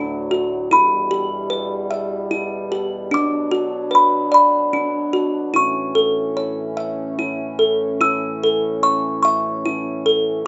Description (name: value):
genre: children's music, lullaby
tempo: 49 BPM (dotted quarters)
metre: 6/8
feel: rubato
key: unclear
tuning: A4 = 440 Hz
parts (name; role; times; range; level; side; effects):
- music box; melody; 0.0-10.5 s; D4 to E6; -20 LUFS; equal; none
- warm French horn section; sustained chords; 0.0-10.5 s; D2 to D4; -28 LUFS; equal; none
room: moderate large studio reverb, RT60 0.8 s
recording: band playing live in one room, nothing above 7.8 kHz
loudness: -19 LUFS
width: mono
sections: 0.0-10.5 A section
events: none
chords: 0.0 D; 0.7 Em; 3.1 Bm; 5.5 A